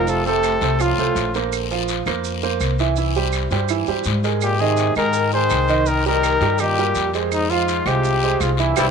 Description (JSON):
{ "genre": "latin, Cuban son and guajira", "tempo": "166 BPM", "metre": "4/4", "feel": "straight", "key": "F minor", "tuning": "A4 = 440 Hz", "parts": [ { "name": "breathy trumpet", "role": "melody", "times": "0.0-1.4, 4.4-8.9 s", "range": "Eb4 to C5", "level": "-21 LUFS", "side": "left 1 dB", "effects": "none" }, { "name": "bright trombone", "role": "second line", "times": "0.0-1.3, 4.4-8.9 s", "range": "G2 to Eb3", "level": "-25 LUFS", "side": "left 14 dB", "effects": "none" }, { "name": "clear grand piano", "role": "arpeggios", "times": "0.0-8.9 s", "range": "Eb3 to F5", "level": "-22 LUFS", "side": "right 10 dB", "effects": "none" }, { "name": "upright bass", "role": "bass", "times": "0.0-8.9 s", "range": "F1 to Ab2", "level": "-23 LUFS", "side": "left 2 dB", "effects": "none" }, { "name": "guiro", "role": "percussion", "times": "0.1-8.8 s", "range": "none", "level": "-29 LUFS", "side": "left 17 dB", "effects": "none" }, { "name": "maracas", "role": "percussion", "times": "0.1-8.9 s", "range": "none", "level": "-35 LUFS", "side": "right 13 dB", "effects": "none" }, { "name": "claves", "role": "percussion", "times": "0.4-8.9 s", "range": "none", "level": "-30 LUFS", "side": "right 13 dB", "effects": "none" } ], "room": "moderate plate reverb, RT60 3.0 s", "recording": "1960s-style stereo with parts hard left and right", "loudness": "-17 LUFS", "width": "side -6 dB against mid", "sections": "0.0-8.9 A section", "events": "none", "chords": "0.1 F; 1.5 Bbsus2; 3.0 C; 4.4 Abadd9; 5.9 Cm7; 7.3 Fm", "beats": "| 0.07 0.44 0.80 1.16 | 1.52 1.89 2.25 2.61 | 2.97 3.33 3.70 4.06 | 4.42 4.78 5.15 5.51 | 5.87 6.23 6.60 6.96 | 7.32 7.68 8.05 8.41 | 8.77" }